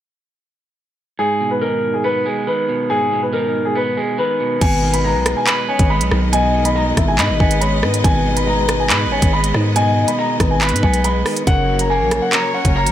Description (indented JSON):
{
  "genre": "hip hop, drill",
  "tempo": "140 BPM",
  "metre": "4/4",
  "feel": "half-time",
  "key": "G# minor",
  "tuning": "A4 = 440 Hz",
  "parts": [
    { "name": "warm concert grand piano", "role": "melody", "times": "1.2-12.9 s", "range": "G#4 to B5", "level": "-19 LUFS", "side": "left 1 dB", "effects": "low-pass filter, ping-pong delay" },
    { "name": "electric guitar at the edge of break-up", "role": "accompaniment", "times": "1.2-12.9 s", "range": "G#2 to C#5", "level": "-22 LUFS", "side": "right 5 dB", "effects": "spring reverb, low-pass filter" },
    { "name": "soft octave-layered synth lead", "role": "second line", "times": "4.6-12.7 s", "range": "A#4 to E5", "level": "-23 LUFS", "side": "left 5 dB", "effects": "chorus, tremolo, ping-pong delay" },
    { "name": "warm symphonic string section", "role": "sustained chords", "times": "4.6-12.9 s", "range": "F#3 to D#5", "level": "-26 LUFS", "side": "left 2 dB", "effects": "none" },
    { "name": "growling 808-style bass", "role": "bass", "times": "4.6-12.9 s", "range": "F#1 to G#2", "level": "-19 LUFS", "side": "equal", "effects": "none" },
    { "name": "drill drum kit", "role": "drums", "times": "4.6-12.9 s", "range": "crash cymbal, handclaps, hi-hat, kick drum, rim click", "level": "-18 LUFS", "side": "equal", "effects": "none" }
  ],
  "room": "little or no reverb",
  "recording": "none",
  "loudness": "-14 LUFS",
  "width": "side -11 dB against mid",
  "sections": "1.2-4.6 A section; 4.6-12.9 B section",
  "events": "none",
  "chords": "1.2 G#m; 11.5 F#"
}